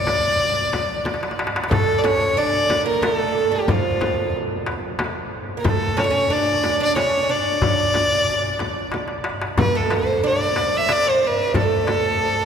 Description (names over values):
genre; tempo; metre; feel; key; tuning
Arabic maqam ensemble; 91 BPM; 3/4; straight; D maqam nahawand; A4 = 441 Hz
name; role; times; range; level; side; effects
rich violin; melody; 0.0-12.4 s; F4 to E5; -20 LUFS; equal; none
darbuka; percussion; 0.1-12.0 s; none; -25 LUFS; left 2 dB; none
frame drum; percussion; 0.1-12.0 s; none; -28 LUFS; left 1 dB; none
oud; second line; 1.7-12.4 s; F3 to D4; -24 LUFS; right 5 dB; none
room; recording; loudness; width
wet cathedral reverb, RT60 6.5 s; recorded in a church or concert hall; -18 LUFS; side -7 dB against mid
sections
0.0-9.6 A section; 9.6-12.4 B section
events
drum fill 1.1-1.7, 8.9-9.6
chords
none